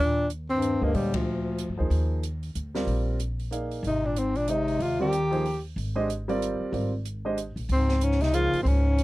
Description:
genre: modal jazz.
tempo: 187 BPM.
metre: 3/4.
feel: swing 61% on 8ths.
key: unclear.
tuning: A4 = 440 Hz.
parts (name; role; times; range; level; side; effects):
breathy tenor saxophone; melody; 0.0-1.8, 3.9-5.6, 7.7-9.0 s; F3 to G4; -26 LUFS; equal; none.
warm bass clarinet; second line; 0.0-1.8, 3.9-5.6, 7.7-9.0 s; D2 to Eb3; -30 LUFS; left 3 dB; none.
upright bass; bass; 0.0-9.0 s; Ab1 to Bb2; -28 LUFS; equal; none.
open jazz drum kit; drums; 0.3-9.0 s; hi-hat, kick drum, ride cymbal, snare drum; -40 LUFS; right 2 dB; none.
warm concert grand piano; accompaniment; 0.8-8.8 s; D3 to F5; -30 LUFS; right 2 dB; none.
room: little or no reverb.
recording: dry, close 1970s-style studio recording.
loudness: -24 LUFS.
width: side -18 dB against mid.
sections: 0.0-7.7 A section; 7.7-9.0 B section.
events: band accent 1.1.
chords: 0.0 Ebmaj9; 3.8 Abmaj9; 7.7 Dbmaj9.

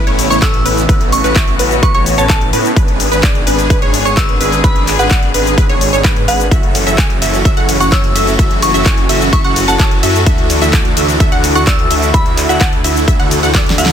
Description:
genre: EDM, festival progressive house.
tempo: 128 BPM.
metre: 4/4.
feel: straight.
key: F# minor.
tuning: A4 = 437 Hz.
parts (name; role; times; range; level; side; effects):
rich chamber string section; sustained chords; 0.0-13.9 s; C#3 to G#4; -21 LUFS; left 3 dB; sidechain pumping.
wide unison pluck; arpeggios; 0.0-13.9 s; A4 to A5; -20 LUFS; right 1 dB; sidechain pumping, dub echo.
supersaw chords; riff; 0.0-13.9 s; A3 to A5; -18 LUFS; right 1 dB; phaser, sidechain pumping, dub echo.
wide detuned saw bass; bass; 0.0-13.9 s; F#1 to A2; -18 LUFS; equal; chorus, sidechain pumping.
pop drum kit; drums; 0.1-13.9 s; handclaps, hi-hat, ride cymbal, shaker, snare drum; -18 LUFS; left 2 dB; none.
soft synth bell; melody; 0.3-13.9 s; F#5 to E6; -19 LUFS; equal; chorus, dub echo.
electronic kick drum; drums; 0.4-13.6 s; none; -12 LUFS; equal; overdrive.
room: little or no reverb.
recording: dense, heavily limited modern master.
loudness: -9 LUFS.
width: side -9 dB against mid.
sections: 0.0-13.9 A section.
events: drum fill 13.5-13.9.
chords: 0.0 Aadd9; 2.8 G#dim; 6.5 F#m7; 10.3 Dadd9.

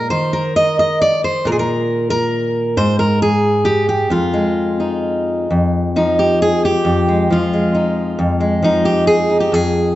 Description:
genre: folk, solo fingerstyle acoustic guitar.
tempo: 134 BPM.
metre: 3/4.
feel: rubato.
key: F minor.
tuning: A4 = 440 Hz.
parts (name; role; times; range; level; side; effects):
fingerpicked steel-string acoustic guitar; solo; 0.0-10.0 s; F2 to Eb5; -14 LUFS; equal; none.
room: moderate scoring stage reverb, RT60 2.1 s.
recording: nothing above 7.9 kHz.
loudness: -14 LUFS.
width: side -15 dB against mid.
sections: 0.0-5.5 A section; 5.5-10.0 B section.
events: none.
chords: 0.1 N.C.; 1.5 Bbsus4; 2.8 N.C.; 4.1 Fm7.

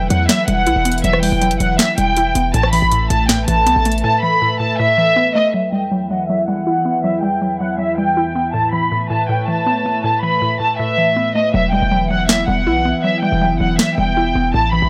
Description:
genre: hip hop, trap.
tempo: 160 BPM.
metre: 4/4.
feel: half-time.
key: E minor.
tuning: A4 = 444 Hz.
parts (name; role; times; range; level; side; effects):
warm studio violin section; melody; 0.0-14.9 s; D#5 to B5; -19 LUFS; equal; low-pass filter, analog delay.
mallet-like synth pluck; accompaniment; 0.0-14.9 s; A2 to E4; -23 LUFS; equal; chorus, low-pass filter.
glassy FM pad; sustained chords; 0.0-14.9 s; E2 to E5; -26 LUFS; equal; ensemble chorus, built-in reverb, phaser, low-pass filter.
hard-hitting 808-style bass; bass; 0.0-4.0, 11.5-14.9 s; E1 to E2; -22 LUFS; equal; none.
trap drum kit; drums; 0.1-4.0, 12.3-13.9 s; hi-hat, rim click, snare drum; -20 LUFS; equal; none.
room: digital ambience.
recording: dry, gritty hardware recording, transformer saturation.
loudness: -16 LUFS.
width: mono.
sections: 0.0-5.5 A section; 5.5-11.5 B section; 11.5-14.9 C section.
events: drums muted 4.0-5.5; filter sweep 5.5-11.5; hi-hats muted 11.5-14.9.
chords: 0.0 Emadd9; 2.5 Asus2; 5.5 Emadd9; 8.5 Asus2; 11.5 Emadd9.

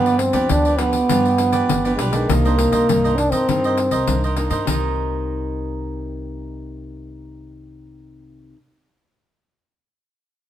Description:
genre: samba and choro.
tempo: 101 BPM.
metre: 4/4.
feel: straight.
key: C minor.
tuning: A4 = 440 Hz.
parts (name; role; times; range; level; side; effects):
breathy trombone; melody; 0.0-4.2 s; G3 to D4; -18 LUFS; right 1 dB; none.
cavaquinho; accompaniment; 0.0-8.6 s; Eb4 to Eb5; -26 LUFS; right 5 dB; none.
nylon-string guitar; accompaniment; 0.0-8.6 s; G2 to D4; -27 LUFS; left 2 dB; none.
upright bass; bass; 0.0-8.5 s; G1 to G2; -24 LUFS; equal; none.
pandeiro; percussion; 0.1-4.8 s; none; -25 LUFS; left 5 dB; none.
room: moderate stone room reverb, RT60 1.1 s.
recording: band playing live in one room.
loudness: -16 LUFS.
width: side -11 dB against mid.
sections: 0.0-2.3 A section; 2.3-4.7 B section; 4.7-7.1 C section.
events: none.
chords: 0.0 G7; 2.3 Cm9; 4.7 Cm7.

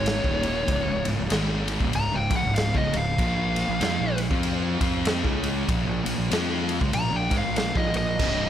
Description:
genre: stoner and doom metal.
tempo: 96 BPM.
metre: 4/4.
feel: swing 60% on 8ths.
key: unclear.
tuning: A4 = 440 Hz.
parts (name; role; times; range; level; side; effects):
fuzz lead guitar; melody; 0.0-8.5 s; Db5 to Bb5; -28 LUFS; equal; distortion, tape echo.
thick fuzz guitar; riff; 0.0-8.5 s; C2 to F4; -30 LUFS; left 9 dB; distortion.
thick fuzz guitar; riff; 0.0-8.5 s; C2 to F4; -29 LUFS; right 8 dB; distortion.
fuzz fingered electric bass; bass; 0.0-8.5 s; C1 to Ab2; -30 LUFS; equal; overdrive.
raw garage drum kit; drums; 0.1-8.4 s; crash cymbal, kick drum, ride cymbal, snare drum; -27 LUFS; equal; none.
fuzz guitar; riff; 8.2-8.5 s; C2 to C3; -31 LUFS; equal; distortion.
room: small room ambience.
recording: none.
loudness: -22 LUFS.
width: side -10 dB against mid.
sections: 0.0-8.5 A section.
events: lead electric guitar solo 0.0-8.5.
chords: 0.0 Db5; 3.2 Bb5.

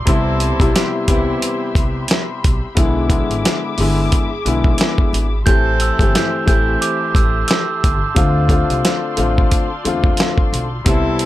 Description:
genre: hip hop, boom-bap hip-hop.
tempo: 89 BPM.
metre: 4/4.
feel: swing 58% on 16ths.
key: unclear.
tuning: A4 = 440 Hz.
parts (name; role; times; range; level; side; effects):
muted studio string section; sustained chords; 0.0-11.3 s; F4 to D6; -28 LUFS; left 2 dB; high-pass filter, low-pass filter.
warm upright piano; accompaniment; 0.1-11.3 s; C3 to G4; -20 LUFS; left 3 dB; cassette tape, high-pass filter, low-pass filter.
mellow horn section; stabs; 0.1-11.3 s; E3 to A4; -26 LUFS; equal; high-pass filter, low-pass filter, tape echo.
upright bass; bass; 0.1-11.3 s; G1 to E2; -20 LUFS; equal; none.
dusty soul sampler-style drum kit; drums; 0.1-11.3 s; hi-hat, kick drum, snare drum; -16 LUFS; equal; none.
glockenspiel with soft plastic mallets; melody; 5.5-7.8 s; D6 to G6; -24 LUFS; right 5 dB; high-pass filter, low-pass filter, tape echo.
room: little or no reverb.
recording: none.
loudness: -14 LUFS.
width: side -15 dB against mid.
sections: 0.0-11.3 A section.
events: none.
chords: 0.1 Cmaj7; 2.8 E7; 5.5 Am7; 8.2 Dm7.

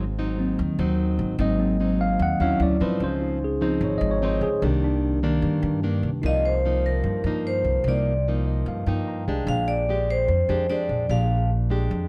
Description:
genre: bossa nova.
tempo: 148 BPM.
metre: 4/4.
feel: straight.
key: C minor.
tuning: A4 = 440 Hz.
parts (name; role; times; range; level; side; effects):
nylon-string guitar; accompaniment; 0.0-12.1 s; F2 to G4; -30 LUFS; equal; none.
upright bass; bass; 0.0-12.1 s; Ab1 to Ab2; -28 LUFS; equal; none.
tine electric piano; accompaniment; 0.4-12.1 s; Eb3 to Bb5; -29 LUFS; equal; none.
vibraphone with medium hard mallets; melody; 6.3-11.5 s; Bb4 to F5; -27 LUFS; equal; none.
room: light reverb.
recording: none.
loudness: -23 LUFS.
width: mono.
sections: 0.0-6.2 A section; 6.2-12.1 B section.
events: tine electric piano solo 0.0-6.2; tine electric piano fill 8.3-9.5, 11.9.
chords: 0.0 Ab7; 2.6 Dmaj9; 3.0 Dbmaj9; 4.6 Cm9; 6.2 Cm11; 9.5 Bb13.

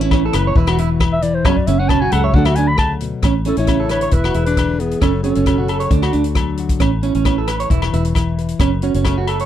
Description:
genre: highlife guitar band.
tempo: 134 BPM.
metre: 4/4.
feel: straight.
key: A major.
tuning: A4 = 439 Hz.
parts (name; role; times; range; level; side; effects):
flamenco guitar; accompaniment; 0.0-9.5 s; F#2 to C#5; -23 LUFS; left 8 dB; none.
electric guitar at the edge of break-up; arpeggios; 0.0-9.5 s; C#4 to C#5; -20 LUFS; right 10 dB; tape echo.
fingered electric bass; bass; 0.0-9.4 s; E1 to D2; -19 LUFS; equal; none.
vintage drum kit; drums; 0.1-9.5 s; hi-hat, kick drum, rim click; -19 LUFS; left 1 dB; none.
agogo bells; percussion; 0.1-9.4 s; none; -27 LUFS; left 7 dB; none.
dark clarinet; melody; 1.1-6.1 s; G#4 to B5; -21 LUFS; left 1 dB; none.
clear alto saxophone; second line; 3.5-6.1 s; B3 to E4; -24 LUFS; left 8 dB; none.
room: little or no reverb.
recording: dry, close 1970s-style studio recording.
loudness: -14 LUFS.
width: side -11 dB against mid.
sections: 0.0-3.2 A section; 3.2-9.5 B section.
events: clarinet solo 0.0-3.2.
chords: 0.0 Aadd9; 0.6 E5; 1.5 F#5; 2.3 D; 3.2 A; 4.1 E; 5.0 F#m; 5.9 D; 6.8 Aadd9; 7.7 E5; 8.6 F#m.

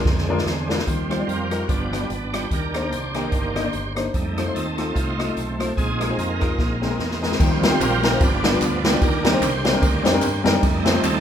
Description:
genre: uptempo gospel.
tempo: 147 BPM.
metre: 4/4.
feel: swing 58% on 8ths.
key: Eb major.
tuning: A4 = 444 Hz.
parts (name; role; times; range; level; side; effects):
bright tonewheel organ; sustained chords; 0.0-11.2 s; D3 to C5; -25 LUFS; right 3 dB; slow rotary speaker, overdrive, chorus vibrato.
fingered electric bass; bass; 0.1-11.2 s; G1 to G2; -27 LUFS; equal; none.
swinging big-band drum kit; drums; 0.1-11.1 s; crash cymbal, hi-hat, kick drum, ride cymbal, rim click, snare drum; -23 LUFS; equal; none.
warm baby grand piano; accompaniment; 0.3-11.0 s; G2 to Eb5; -24 LUFS; left 3 dB; none.
tambourine and handclaps; percussion; 7.4-11.1 s; none; -33 LUFS; left 1 dB; none.
room: moderate recital hall reverb, RT60 1.5 s.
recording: recorded in a church or concert hall.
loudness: -19 LUFS.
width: side -9 dB against mid.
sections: 0.9-7.4 A section; 7.4-11.2 B section.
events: drum fill 0.1-0.9, 6.6-7.4; tonewheel organ solo 0.9-7.4, 7.4-11.2.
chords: 0.0 Bb7; 0.9 Eb69; 1.7 G7; 2.5 Cm9; 4.1 F7; 5.8 Bb7sus4; 6.6 Bb9sus4; 7.4 Eb69; 8.2 G7; 9.0 Cm9; 10.6 F7.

